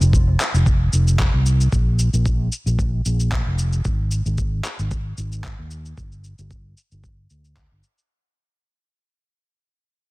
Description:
organic downtempo; 113 BPM; 4/4; swing 54% on 16ths; A4 = 439 Hz
fretless electric bass; bass; 0.0-7.8 s; F1 to Eb2; -19 LUFS; equal; tube saturation, ensemble chorus
electronic shaker and handclaps; drums; 0.0-8.1 s; -28 LUFS; left 1 dB; overdrive
electronic kick drum; drums; 0.1-7.7 s; -21 LUFS; equal; overdrive
little or no reverb; dense, heavily limited modern master; -17 LUFS; side -22 dB against mid
0.0-8.1 A section
fade-out 0.0-8.1
0.13 0.66 1.19 | 1.72 2.25 2.79 3.32 | 3.85 4.38 4.91 5.44 | 5.97 6.50 7.03 7.56

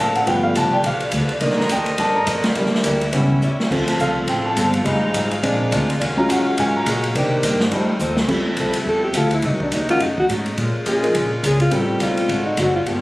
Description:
jazz, big band swing; 210 BPM; 4/4; swing 59% on 8ths; A4 = 438 Hz
picked old ladder-braced acoustic guitar; accompaniment; 0.0-13.0 s; G2 to A4; -26 LUFS; left 1 dB
warm upright piano; accompaniment; 0.0-12.3 s; Eb3 to Bb5; -21 LUFS; equal
warm saxophone section; sustained chords; 0.0-13.0 s; C3 to F5; -27 LUFS; equal
upright bass; bass; 0.0-13.0 s; F1 to C3; -23 LUFS; equal
swinging big-band drum kit; drums; 0.2-12.9 s; crash cymbal, hi-hat, kick drum, ride cymbal, snare drum; -25 LUFS; equal
warm alto saxophone; melody; 8.9-13.0 s; D4 to A4; -20 LUFS; left 1 dB
moderate club reverb, RT60 0.8 s; recorded on a phone in the room, studio ambience, compression; -16 LUFS; side -19 dB against mid
0.0-8.3 A section; 8.3-13.0 A section
upright piano solo 0.0-8.3; drum fill 3.4, 8.0; alto saxophone solo 8.3-13.0
0.3 G7; 1.4 Cm9; 2.6 Em7b5; 3.1 A7; 3.7 Dm7; 4.9 Fm7; 5.4 Bb7; 6.0 Ebm11; 7.1 Cm7; 7.7 F7; 8.3 Fmaj7; 9.4 Cm7b5; 10.0 B9; 10.6 Bbm7; 11.7 Am7b5; 12.3 Ab7#11
| 0.27 0.56 0.84 1.13 | 1.42 1.70 1.99 2.27 | 2.56 2.85 3.13 3.42 | 3.71 4.00 4.28 4.57 | 4.85 5.14 5.43 5.71 | 6.00 6.29 6.57 6.86 | 7.14 7.43 7.72 8.00 | 8.29 8.57 8.86 9.15 | 9.43 9.72 10.01 10.29 | 10.58 10.86 11.15 11.44 | 11.72 12.01 12.29 12.58 | 12.87

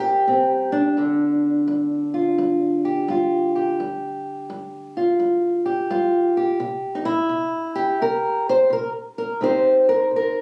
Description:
acoustic country blues, solo or duo; 85 BPM; 4/4; swing 64% on 8ths; A4 = 439 Hz
fingerpicked old ladder-braced acoustic guitar; solo; 0.0-10.4 s; G2 to C5; -21 LUFS; equal
light reverb; recorded on a phone in the room, club reverb; -21 LUFS; mono
0.0-10.4 A section
0.0 C7(no3); 1.0 G5; 6.6 N.C.; 9.4 Cm7
0.26 | 0.97 1.67 2.38 3.08 | 3.78 4.49 5.19 5.90 | 6.60 7.30 8.01 8.71 | 9.42 10.12

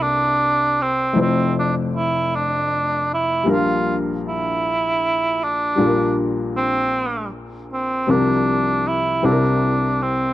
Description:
gospel; 52 BPM (dotted quarters); 6/8; straight; F major; A4 = 439 Hz
mellow cor anglais; melody; 0.0-10.3 s; C4 to F4; -20 LUFS; right 2 dB
warm baby grand piano; accompaniment; 0.0-10.3 s; F1 to D5; -21 LUFS; left 2 dB
studio ambience; dry, close 1970s-style studio recording; -17 LUFS; side -14 dB against mid
0.0-1.1 A section; 1.1-10.3 B section
0.0 C13; 1.1 Fmaj7; 3.5 Bb6; 8.1 C7sus4; 9.2 C7
| 1.15 2.30 | 3.46 4.62 | 5.77 6.93 | 8.08 9.24

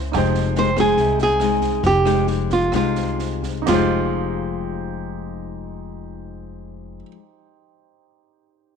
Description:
bossa nova; 123-145 BPM; 4/4; straight; F minor; A4 = 441 Hz
clear grand piano; accompaniment; 0.0-8.8 s; Eb4 to G5; -30 LUFS; right 10 dB
nylon-string guitar; accompaniment; 0.0-7.2 s; C3 to G4; -24 LUFS; left 14 dB
upright bass; bass; 0.0-7.0 s; F1 to Db2; -26 LUFS; equal
open jazz drum kit; drums; 0.1-3.8 s; china cymbal, kick drum, rim click, snare drum; -31 LUFS; right 5 dB
nylon-string guitar; melody; 0.6-7.0 s; F4 to C5; -20 LUFS; right 3 dB
light reverb; 1960s-style stereo with parts hard left and right; -17 LUFS; side -6 dB against mid
0.0-3.7 A section; 3.7-7.6 B section
slowing down 0.1-3.7
0.1 Fm9
| 0.15 0.56 0.98 1.41 | 1.84 2.28 2.73 3.19 | 3.67 4.16 4.65 5.13 | 5.62 6.11 6.59 7.08

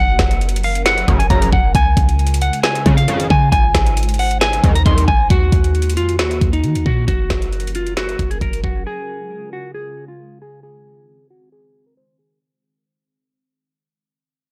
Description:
hip hop, trap; 135 BPM; 4/4; half-time; A4 = 440 Hz
clean electric guitar; melody; 0.0-12.4 s; Eb4 to C6; -23 LUFS; equal; phaser, low-pass filter, tape echo
glassy FM pad; sustained chords; 0.1-12.4 s; Db3 to C5; -33 LUFS; equal; ensemble chorus, built-in reverb, low-pass filter
clean 808-style bass; bass; 0.0-8.8 s; Gb1 to Eb3; -20 LUFS; equal
trap drum kit; drums; 0.2-8.7 s; finger snaps, hi-hat, kick drum, snare drum; -20 LUFS; equal; overdrive, soft clipping on snare
sync-sweep polysynth; stabs; 1.1-5.0 s; Ab1 to Eb3; -23 LUFS; equal; chorus, phaser
little or no reverb; blown-out, overdriven recording, overdrive; -16 LUFS; mono
0.0-5.3 A section; 5.3-12.4 B section
fade-out 5.3-12.4; filter sweep 5.3-12.4
0.0 Gb; 1.7 Db; 3.5 Ab; 5.3 Ebm; 7.1 Gb; 8.9 Db; 10.6 Ab
0.41 0.86 1.30 | 1.75 2.19 2.64 3.08 | 3.52 3.97 4.41 4.86 | 5.30 5.75 6.19 6.64 | 7.08 7.53 7.97 8.41 | 8.86 9.30 9.75 10.19 | 10.64 11.08 11.53 11.97

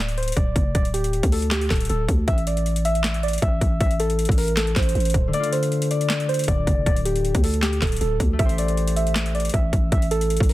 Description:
hip hop, trap; 157 BPM; 4/4; half-time; A4 = 441 Hz
muted felt-like synth keys; melody; 0.0-10.5 s; G4 to E5; -26 LUFS; right 1 dB; chorus, low-pass filter
growling 808-style bass; bass; 0.0-10.5 s; D1 to D2; -23 LUFS; equal
trap drum kit; drums; 0.1-10.5 s; handclaps, hi-hat, kick drum, snare drum; -23 LUFS; equal; overdrive
concert harp; accompaniment; 5.3-10.5 s; D3 to C5; -28 LUFS; left 3 dB; low-pass filter
little or no reverb; dense, heavily limited modern master; -19 LUFS; side -16 dB against mid
0.0-10.5 A section
kick muted 5.3-5.7
0.0 N.C.; 2.3 A5; 5.3 Dm; 8.4 Am7
0.37 | 0.75 1.13 1.51 1.90 | 2.28 2.66 3.04 3.42 | 3.81 4.19 4.57 4.95 | 5.33 5.72 6.10 6.48 | 6.86 7.25 7.63 8.01 | 8.39 8.77 9.16 9.54 | 9.92 10.30

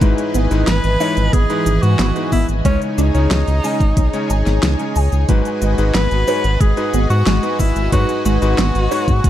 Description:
synthwave; 91 BPM; 4/4; straight; G# minor; A4 = 440 Hz
chorused pulse-width pad; sustained chords; 0.0-9.3 s; E3 to G#5; -24 LUFS; equal; vintage 12-bit sampler grit, sidechain pumping
warbly dusty pluck; arpeggios; 0.0-9.3 s; F#3 to G#5; -25 LUFS; right 2 dB; ensemble chorus, ping-pong delay
bright electric grand piano; stabs; 0.0-9.1 s; G#2 to D#5; -23 LUFS; left 2 dB
round analog bass; bass; 0.0-9.3 s; F#1 to G#2; -17 LUFS; equal; sidechain pumping
electronic kick drum; drums; 0.0-9.3 s; -16 LUFS; equal
pop drum kit; drums; 0.0-9.3 s; cabasa, hi-hat, snare drum; -23 LUFS; equal
bright tenor saxophone; melody; 0.7-9.3 s; C#4 to B4; -22 LUFS; equal; ping-pong delay
little or no reverb; dark, warm production; -14 LUFS; side -12 dB against mid
0.0-9.3 A section
0.0 Emaj7/G#; 2.7 C#sus2; 5.3 G#m7
| 0.01 0.67 1.33 1.99 | 2.65 3.31 3.97 4.63 | 5.29 5.95 6.61 7.27 | 7.93 8.59 9.24

